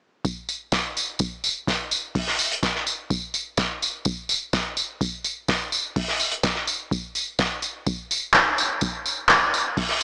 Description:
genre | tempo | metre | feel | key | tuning
acid house | 126 BPM | 4/4 | straight | none | none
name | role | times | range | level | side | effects
electronic kick drum | drums | 0.2-9.9 s | none | -31 LUFS | equal | none
loose indie drum kit | drums | 0.2-10.0 s | hi-hat, snare drum, tambourine | -28 LUFS | equal | high-pass filter on hats, high-pass filter on snare, high-pass filter on perc, high-pass filter on room
electronic handclaps | drums | 8.3-9.4 s | none | -22 LUFS | equal | none
room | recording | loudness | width
moderate lush hall reverb, RT60 2.4 s | small speaker sound | -24 LUFS | mono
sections
0.2-10.0 A section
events
none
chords
none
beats
| 0.25 0.72 1.20 1.68 | 2.15 2.63 3.10 3.58 | 4.06 4.53 5.01 5.49 | 5.96 6.44 6.91 7.39 | 7.87 8.34 8.82 9.29 | 9.77

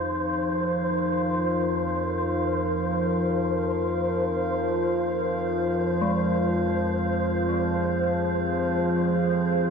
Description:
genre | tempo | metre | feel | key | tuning
dark ambient drone | free time | none | none | F minor | A4 = 439 Hz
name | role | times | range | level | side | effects
dark analog pad | sustained chords | 0.0-9.7 s | C4 to F5 | -30 LUFS | equal | chorus
analog drone | drone | 0.0-9.7 s | F2 to F3 | -26 LUFS | equal | chorus
wind-like tuned noise texture | texture | 0.0-9.7 s | C5 | -28 LUFS | equal | built-in reverb
gamelan-type bronze metallophone | arpeggios | 6.0-9.7 s | Ab3 | -31 LUFS | left 2 dB | tape echo
room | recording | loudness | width
wet spring reverb, RT60 2.6 s | echo-heavy mix | -23 LUFS | side -6 dB against mid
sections
0.0-9.7 A section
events
none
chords
0.0 Fm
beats
free time

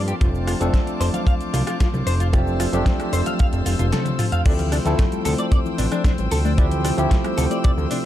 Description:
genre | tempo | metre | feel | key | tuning
nu-disco, nu disco | 113 BPM | 4/4 | straight | D minor | A4 = 440 Hz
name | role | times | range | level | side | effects
bell-like tine electric piano | accompaniment | 0.0-8.1 s | F3 to A4 | -25 LUFS | equal | wide subtle chorus, sidechain pumping, tape echo
rich chamber string section | sustained chords | 0.0-8.1 s | Bb3 to E6 | -32 LUFS | left 3 dB | sidechain pumping
fat analog bass | bass | 0.0-7.9 s | F1 to G2 | -22 LUFS | equal | tube saturation
direct-recorded clean electric guitar | riff | 0.1-8.0 s | A3 to F5 | -30 LUFS | left 2 dB | ensemble chorus, tape echo
pop drum kit | drums | 0.1-8.0 s | crash cymbal, hi-hat, rim click, shaker, snare drum, toms | -28 LUFS | equal | overdrive
kick drum | drums | 0.2-7.8 s | none | -18 LUFS | equal | none
congas | percussion | 0.2-4.2 s | none | -32 LUFS | right 3 dB | none
soft round pluck | arpeggios | 4.5-8.0 s | C3 to A3 | -29 LUFS | left 4 dB | chorus, sidechain pumping, ping-pong delay
room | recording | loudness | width
light reverb, small room ambience | dark, warm production | -18 LUFS | side -12 dB against mid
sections
0.0-4.5 A section; 4.5-8.1 B section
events
filter sweep on tine electric piano 0.0-4.5; drum fill 3.9-4.5; drop 4.5-8.1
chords
0.2 F6; 4.5 Dm11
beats
| 0.21 0.74 1.27 1.80 | 2.33 2.86 3.39 3.92 | 4.46 4.99 5.52 6.05 | 6.58 7.11 7.64

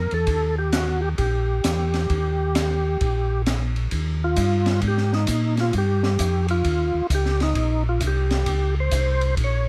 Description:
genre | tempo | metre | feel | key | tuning
soul jazz organ trio | 132 BPM | 4/4 | swing 65% on 8ths | Eb mixolydian | A4 = 440 Hz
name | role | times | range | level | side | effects
percussive tonewheel organ | melody | 0.0-9.7 s | Eb4 to Db5 | -27 LUFS | equal | slow rotary speaker, overdrive, chorus vibrato
mellow tonewheel organ | bass | 0.0-9.7 s | Bb1 to Bb2 | -25 LUFS | equal | chorus vibrato, slow rotary speaker
open jazz drum kit | drums | 0.1-9.5 s | hi-hat, kick drum, ride cymbal, snare drum | -30 LUFS | equal | none
room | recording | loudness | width
little or no reverb | close, detailed microphones | -22 LUFS | mono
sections
0.0-3.9 A section; 3.9-9.7 B section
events
tonewheel organ solo 3.9-9.7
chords
0.3 Eb; 3.9 Eb7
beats
| 0.28 0.73 1.19 1.65 | 2.10 2.56 3.01 3.46 | 3.92 4.37 4.83 5.28 | 5.74 6.19 6.64 7.10 | 7.55 8.01 8.46 8.91 | 9.37

